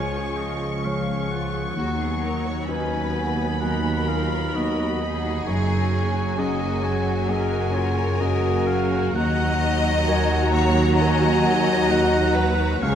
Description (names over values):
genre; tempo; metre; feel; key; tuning
cinematic; 65 BPM; 4/4; rubato; Eb minor; A4 = 440 Hz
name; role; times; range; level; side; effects
warm symphonic violin section; melody; 0.0-12.9 s; Ab5 to Db6; -31 LUFS; left 5 dB; none
clear clarinet; second line; 0.0-12.9 s; B3 to F#4; -32 LUFS; equal; none
mellow hollow large flute ensemble; second line; 0.0-12.9 s; F5 to Bb5; -33 LUFS; left 2 dB; none
rich symphonic violin section; second line; 0.0-12.9 s; F4 to Eb5; -29 LUFS; left 3 dB; none
warm oboe; second line; 0.0-12.9 s; Db5 to Bb5; -32 LUFS; right 2 dB; none
dark concert grand piano; accompaniment; 0.0-12.9 s; Db2 to Db5; -28 LUFS; left 2 dB; none
rich symphonic viola section; accompaniment; 0.0-12.9 s; F3 to Ab4; -32 LUFS; right 1 dB; none
mellow French horn section; sustained chords; 0.0-12.9 s; F3 to Ab4; -30 LUFS; left 2 dB; none
clear symphonic cello section; bass; 0.0-12.9 s; Db2 to Gb2; -26 LUFS; right 3 dB; none
clear symphonic double bass section; bass; 0.0-12.9 s; Gb1 to D#2; -28 LUFS; right 2 dB; none
room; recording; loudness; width
wet concert hall reverb, RT60 2.0 s; none; -20 LUFS; side -9 dB against mid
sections
0.0-12.9 A section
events
none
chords
0.0 Db; 1.8 B/D#; 5.5 Gbadd9; 9.1 Ebm